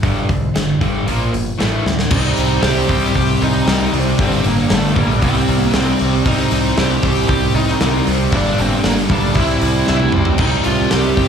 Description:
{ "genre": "hard rock", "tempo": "116 BPM", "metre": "4/4", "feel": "straight", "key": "unclear", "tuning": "A4 = 440 Hz", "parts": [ { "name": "cranked stack guitar", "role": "riff", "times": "0.0-11.3 s", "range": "G2 to C4", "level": "-22 LUFS", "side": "right 12 dB", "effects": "overdrive, slapback echo" }, { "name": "crunchy overdriven guitar", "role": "riff", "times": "0.0-11.3 s", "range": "G2 to C4", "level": "-21 LUFS", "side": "left 9 dB", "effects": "harmonic tremolo, slapback echo" }, { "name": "modern bright picked electric bass", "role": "bass", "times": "0.0-11.3 s", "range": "G1 to D2", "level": "-20 LUFS", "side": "right 1 dB", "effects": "none" }, { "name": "big rock drum kit", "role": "drums", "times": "0.0-11.3 s", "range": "crash cymbal, hi-hat, kick drum, snare drum, toms", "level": "-19 LUFS", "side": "equal", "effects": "none" }, { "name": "high-gain lead guitar", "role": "melody", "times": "2.1-11.3 s", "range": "A3 to G4", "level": "-20 LUFS", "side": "right 1 dB", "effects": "distortion, slapback echo" }, { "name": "sludgy distorted guitar", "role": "riff", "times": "2.1-11.3 s", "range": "G2 to E4", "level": "-23 LUFS", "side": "left 1 dB", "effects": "overdrive" } ], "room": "light reverb", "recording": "live gig heard through the venue's PA, club reverb", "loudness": "-13 LUFS", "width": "side -7 dB against mid", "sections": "0.0-2.1 A section; 2.1-11.3 B section", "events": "drum fill 1.9, 9.9-10.4", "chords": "0.0 G5; 1.1 Bb5; 1.6 A5; 2.1 Cm; 4.2 Gm; 5.2 C; 6.3 Cm; 8.3 Gm; 9.4 C; 10.4 Cm" }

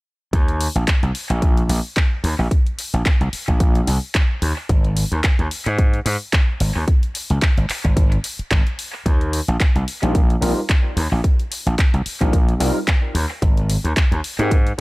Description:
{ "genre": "nu-disco, nu disco", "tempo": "110 BPM", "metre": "4/4", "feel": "swing 56% on 16ths", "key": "Eb major", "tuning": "A4 = 440 Hz", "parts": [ { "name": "gritty slap bass", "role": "bass", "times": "0.3-14.7 s", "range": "Ab1 to Ab2", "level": "-19 LUFS", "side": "equal", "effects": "overdrive" }, { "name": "electronic kick drum", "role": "drums", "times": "0.3-14.6 s", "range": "none", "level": "-16 LUFS", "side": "equal", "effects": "studio reverb" }, { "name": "house drum kit", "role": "drums", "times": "0.3-14.8 s", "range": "handclaps, hi-hat", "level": "-25 LUFS", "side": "equal", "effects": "studio reverb, analog delay" }, { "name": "overdriven tine electric piano", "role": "accompaniment", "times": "10.0-14.8 s", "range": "G3 to Bb4", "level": "-25 LUFS", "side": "equal", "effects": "ensemble chorus, analog delay" } ], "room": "digital ambience", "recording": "echo-heavy mix", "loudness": "-16 LUFS", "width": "side -22 dB against mid", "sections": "0.3-14.8 A section", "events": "none", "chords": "0.3 Eb5; 4.7 Ab5; 6.9 N.C.; 9.1 Eb6; 13.4 Ab5" }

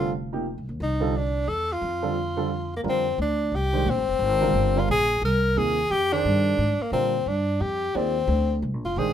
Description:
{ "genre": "modal jazz", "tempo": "176 BPM", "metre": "3/4", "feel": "swing 63% on 8ths", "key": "Bb mixolydian", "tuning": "A4 = 439 Hz", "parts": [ { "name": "breathy tenor saxophone", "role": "melody", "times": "0.0-9.1 s", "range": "Bb3 to Bb4", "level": "-24 LUFS", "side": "left 2 dB", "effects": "none" }, { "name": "warm upright piano", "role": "accompaniment", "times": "0.0-9.1 s", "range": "C3 to D5", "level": "-28 LUFS", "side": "right 5 dB", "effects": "none" }, { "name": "upright bass", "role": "bass", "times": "0.0-9.1 s", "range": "F1 to Bb2", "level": "-27 LUFS", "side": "equal", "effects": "none" } ], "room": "light reverb", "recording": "minimal, uncompressed stereo recording", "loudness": "-22 LUFS", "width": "side -9 dB against mid", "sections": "0.0-2.8 A section; 2.8-9.1 B section", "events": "none", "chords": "0.0 F69; 2.8 Bb13" }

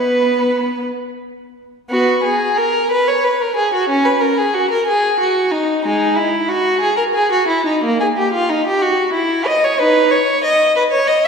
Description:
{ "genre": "classical, baroque-style suite movement for unaccompanied violin", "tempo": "61 BPM (dotted quarters)", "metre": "6/8", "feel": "rubato", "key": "B major", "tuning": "A4 = 440 Hz", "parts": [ { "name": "rich violin", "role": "solo", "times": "0.0-11.3 s", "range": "G#3 to D#5", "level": "-14 LUFS", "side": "equal", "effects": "none" } ], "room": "wet scoring stage reverb, RT60 2.0 s", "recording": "heard from further back in the room", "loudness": "-13 LUFS", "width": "side -5 dB against mid", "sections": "0.0-1.9 A section; 1.9-11.3 B section", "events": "none", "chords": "none" }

